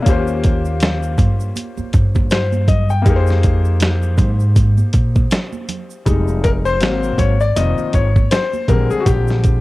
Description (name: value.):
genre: hip hop, jazz-hop.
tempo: 80 BPM.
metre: 4/4.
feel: swing 58% on 16ths.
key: F minor.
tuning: A4 = 440 Hz.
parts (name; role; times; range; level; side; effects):
clear concert grand piano; accompaniment; 0.0-9.6 s; D3 to G5; -21 LUFS; left 5 dB; none.
upright bass; bass; 0.1-9.6 s; F1 to Bb2; -16 LUFS; equal; none.
dusty soul sampler-style drum kit; drums; 0.1-9.6 s; hi-hat, kick drum, snare drum; -16 LUFS; equal; cassette tape.
tube shaker and congas; percussion; 0.1-9.6 s; none; -30 LUFS; right 8 dB; none.
room: small room ambience.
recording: home recording on cassette.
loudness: -13 LUFS.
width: side -18 dB against mid.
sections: 0.0-6.1 A section; 6.1-9.6 B section.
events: grand piano solo 6.1-9.6.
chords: 0.1 Eb13; 3.1 Fm11; 6.8 Ab7; 7.6 Fm7; 8.7 Bb13.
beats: | 0.06 0.81 1.56 2.31 | 3.06 3.81 4.56 5.31 | 6.06 6.81 7.56 8.31 | 9.06.